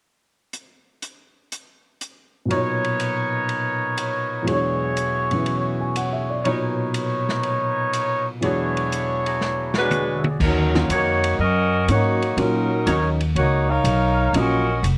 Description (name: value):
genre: jazz, big band swing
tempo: 122 BPM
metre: 4/4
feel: swing 69% on 8ths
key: Eb minor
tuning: A4 = 440 Hz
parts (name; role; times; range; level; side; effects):
- swinging big-band drum kit; drums; 0.5-15.0 s; crash cymbal, hi-hat, kick drum, ride cymbal, snare drum, toms; -33 LUFS; equal; none
- warm upright piano; accompaniment; 2.5-14.7 s; E2 to G#5; -27 LUFS; equal; none
- warm trumpet section; stabs; 2.5-13.1 s; D4 to B5; -26 LUFS; equal; none
- mellow saxophone section; melody; 9.8-14.8 s; Gb3 to F5; -23 LUFS; equal; none
- upright bass; bass; 10.4-15.0 s; F1 to Bb2; -24 LUFS; equal; none
room: light reverb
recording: cassette tape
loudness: -22 LUFS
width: mono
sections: 0.5-2.5 A section; 2.5-10.4 B section; 10.4-15.0 C section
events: drum fill 9.4-10.4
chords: 0.5 N.C.; 2.5 Bmaj9; 4.5 E13; 6.5 Bmaj9; 8.4 E13; 10.4 Ebm7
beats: | 0.53 1.02 1.51 2.01 | 2.50 3.00 3.49 3.98 | 4.48 4.97 5.46 5.96 | 6.45 6.95 7.44 7.93 | 8.43 8.92 9.41 9.91 | 10.40 10.89 11.39 11.88 | 12.37 12.86 13.36 13.85 | 14.34 14.83